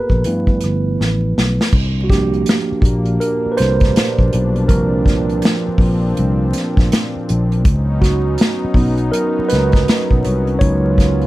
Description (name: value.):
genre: R&B, neo-soul.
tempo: 81 BPM.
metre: 4/4.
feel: swing 62% on 16ths.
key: unclear.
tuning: A4 = 440 Hz.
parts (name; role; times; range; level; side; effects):
mellow tine electric piano; accompaniment; 0.0-11.3 s; F3 to Db5; -19 LUFS; right 3 dB; auto-pan.
sustaining fretless electric bass; bass; 0.1-11.3 s; G1 to G2; -18 LUFS; equal; analog chorus.
unplugged drum kit; drums; 0.1-11.3 s; crash cymbal, hi-hat, kick drum, rim click, snare drum; -15 LUFS; equal; none.
warm analog pad; sustained chords; 1.7-11.3 s; Bb2 to F4; -23 LUFS; left 3 dB; chorus.
room: light reverb.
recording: dark, warm production, vinyl crackle.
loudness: -13 LUFS.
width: side -17 dB against mid.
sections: 0.0-1.7 A section; 1.7-11.3 B section.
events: tine electric piano solo 0.0-1.7, 1.7-11.3; drum fill 1.0-1.7.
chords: 0.2 G13; 1.7 C9sus4; 7.7 Db9sus4.